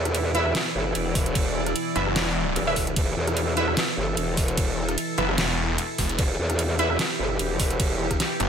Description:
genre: heavy wobble dubstep.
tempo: 149 BPM.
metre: 4/4.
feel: swing 54% on 16ths, half-time.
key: E minor.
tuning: A4 = 439 Hz.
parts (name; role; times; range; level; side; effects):
evolving wavetable pad; sustained chords; 0.0-8.5 s; B2 to D5; -29 LUFS; equal; chorus, built-in reverb, sidechain pumping.
growl bass; bass; 0.0-8.2 s; E1 to E2; -26 LUFS; equal; chorus, overdrive.
dubstep drum kit; drums; 0.1-8.5 s; crash cymbal, hi-hat, rim click, snare drum; -28 LUFS; right 1 dB; none.
orchestra-hit-like synth stab; stabs; 0.3-7.0 s; E4 to E5; -30 LUFS; right 2 dB; built-in reverb, dub echo.
electronic kick drum; drums; 1.2-8.2 s; none; -26 LUFS; equal; none.
snarling distorted saw bass; bass; 2.0-2.5, 5.2-8.5 s; E1 to F#1; -25 LUFS; equal; distortion, overdrive.
room: light reverb, digital ambience.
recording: none.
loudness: -22 LUFS.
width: side -7 dB against mid.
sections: 0.0-8.5 A section.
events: none.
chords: 0.0 E5.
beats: 0.14 0.55 0.95 | 1.35 1.76 2.16 2.56 | 2.96 3.37 3.77 4.17 | 4.58 4.98 5.38 5.78 | 6.19 6.59 6.99 7.39 | 7.80 8.20.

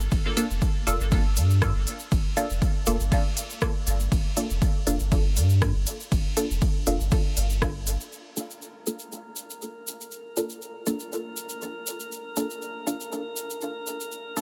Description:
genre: dub techno.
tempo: 120 BPM.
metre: 4/4.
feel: swing 53% on 16ths.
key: G minor.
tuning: A4 = 437 Hz.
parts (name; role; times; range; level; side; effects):
warm sub bass; bass; 0.0-8.0 s; F1 to G2; -27 LUFS; equal; sidechain pumping.
egg shaker; percussion; 0.0-14.4 s; none; -37 LUFS; equal; none.
deep house drum kit; drums; 0.1-8.0 s; hi-hat, ride cymbal, rim click; -37 LUFS; equal; none.
electronic kick drum; drums; 0.1-7.7 s; none; -27 LUFS; equal; none.
filtered dub chord stab; stabs; 0.4-14.4 s; Bb3 to A4; -34 LUFS; equal; phaser, sidechain pumping, dub echo.
filtered dub chord stab; riff; 0.9-7.0 s; A4 to F5; -40 LUFS; equal; phaser, subtle chorus, sidechain pumping, dub echo.
drifting glass-harmonics texture; texture; 8.6-14.4 s; Bb4; -40 LUFS; equal; chorus, built-in reverb, sidechain pumping.
room: light reverb.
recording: none.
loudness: -26 LUFS.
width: mono.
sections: 0.0-8.1 A section; 8.1-14.4 B section.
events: filter sweep on synth stab 8.1-14.4.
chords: 0.0 Gm7; 8.1 N.C..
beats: | 0.12 0.62 1.12 1.62 | 2.12 2.62 3.12 3.62 | 4.12 4.62 5.12 5.62 | 6.12 6.62 7.12 7.62 | 8.12 8.62 9.12 9.62 | 10.12 10.62 11.12 11.62 | 12.12 12.62 13.12 13.62 | 14.12.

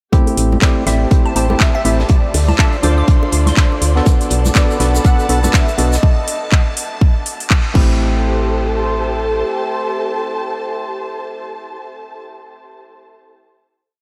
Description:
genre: deep house.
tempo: 122 BPM.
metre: 4/4.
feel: swing 59% on 16ths.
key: A minor.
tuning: A4 = 439 Hz.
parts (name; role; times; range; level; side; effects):
percussive organ stab; stabs; 0.1-11.8 s; A3 to E5; -24 LUFS; equal; chorus, cassette tape, sidechain pumping, analog delay.
electronic kick drum; drums; 0.1-7.9 s; none; -14 LUFS; equal; none.
warm soul drum kit; drums; 0.1-6.0 s; hi-hat, snare drum; -34 LUFS; equal; none.
congas and bongos; percussion; 0.1-5.9 s; none; -28 LUFS; equal; none.
dark studio string section; texture; 0.1-12.2 s; F4 to C6; -29 LUFS; equal; sidechain pumping.
house drum kit; drums; 0.3-7.9 s; crash cymbal, handclaps, hi-hat; -25 LUFS; equal; none.
woody FM bass; bass; 0.4-9.4 s; A1 to D2; -18 LUFS; equal; sidechain pumping.
warm velvety synth lead; melody; 0.6-11.8 s; A4 to F#5; -28 LUFS; equal; chorus, tape echo.
glassy wavetable pluck; melody; 0.9-4.1 s; E5 to D6; -30 LUFS; equal; chorus.
warbly tape-like pad; sustained chords; 4.1-11.8 s; A4 to D6; -31 LUFS; equal; chorus, built-in reverb, sidechain pumping.
tube shaker; percussion; 4.1-6.0 s; none; -30 LUFS; equal; none.
string machine, violins; texture; 4.1-8.0 s; A5; -35 LUFS; equal; ensemble chorus, sidechain pumping.
room: moderate huge ambient reverb, RT60 7.8 s.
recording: dreamy mix soaked in reverb.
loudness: -15 LUFS.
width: mono.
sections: 0.1-8.0 drop; 8.0-11.9 final note.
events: drop 0.1-8.0; band accent 7.5.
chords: 0.1 Am7; 2.1 Dm7; 4.1 Bm7; 6.0 N.C.; 7.8 Am7.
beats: | 0.13 0.62 1.11 1.60 | 2.10 2.59 3.08 3.57 | 4.06 4.55 5.05 5.54 | 6.03 6.52 7.01 7.51 | 8.00 8.49 8.98 9.47 | 9.96 10.46 10.95 11.44.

